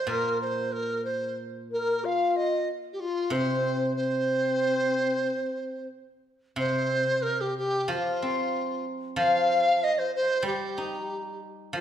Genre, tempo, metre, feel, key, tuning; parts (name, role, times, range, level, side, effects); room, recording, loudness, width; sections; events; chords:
chinese traditional, Chinese chamber ensemble; 92 BPM; 2/4; rubato; C yu mode; A4 = 440 Hz
mellow hollow large dizi; melody; 0.0-11.4 s; F4 to F5; -26 LUFS; equal
guzheng; accompaniment; 0.0-11.8 s; Bb2 to Eb4; -30 LUFS; equal
mellow low xiao; second line; 1.7-5.9, 11.8 s; C4 to Bb4; -30 LUFS; left 5 dB
wet recital hall reverb, RT60 1.4 s; recorded in a church or concert hall; -25 LUFS; side -10 dB against mid
0.0-6.6 A section; 6.6-11.8 B section